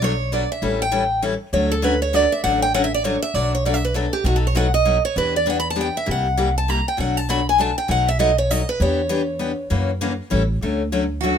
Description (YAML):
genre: acoustic string swing (jazz manouche)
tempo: 198 BPM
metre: 3/4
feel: swing 59% on 8ths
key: D major, B minor from 3.3 s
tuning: A4 = 439 Hz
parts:
  - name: picked steel-string acoustic guitar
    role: melody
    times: 0.0-9.7 s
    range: F#4 to B5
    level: -20 LUFS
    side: right 1 dB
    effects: none
  - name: picked steel-string acoustic guitar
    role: accompaniment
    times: 0.0-11.3 s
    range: B2 to A4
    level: -23 LUFS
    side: left 4 dB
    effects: none
  - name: upright bass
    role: bass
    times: 0.0-11.3 s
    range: A1 to F#2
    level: -23 LUFS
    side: right 1 dB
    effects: none
  - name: picked steel-string acoustic guitar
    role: second line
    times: 11.2-11.4 s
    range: F#4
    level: -20 LUFS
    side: right 4 dB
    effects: none
room: light reverb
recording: minimal, uncompressed stereo recording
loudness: -18 LUFS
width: side -8 dB against mid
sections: 0.0-3.3 A section; 3.3-10.6 A section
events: steel-string acoustic guitar solo 0.0-10.6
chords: 0.0 Bm7; 0.6 A7; 1.5 Dmaj7; 3.3 Bm7; 4.2 B7; 5.2 Em7; 6.1 C7; 7.0 Bm7; 7.9 B7; 8.8 Em7; 9.7 F#7; 10.3 A7; 10.6 Dmaj7